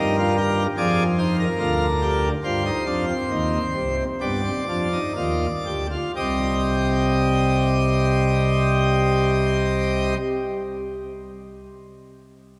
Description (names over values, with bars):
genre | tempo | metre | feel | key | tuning
classical, baroque-style 3-part fugue for pipe organ | 59-76 BPM | 4/4 | straight | C minor | A4 = 440 Hz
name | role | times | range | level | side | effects
pipe organ, plenum | solo | 0.0-10.2 s | C2 to Eb5 | -22 LUFS | equal | none
room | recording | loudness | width
wet cathedral reverb, RT60 4.7 s | none | -22 LUFS | mono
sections
0.0-6.1 A section; 6.1-10.2 B section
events
slowing down 0.0-6.1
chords
0.0 Eb; 0.8 Ddim/F; 2.4 Cm; 4.2 G7; 6.1 Cm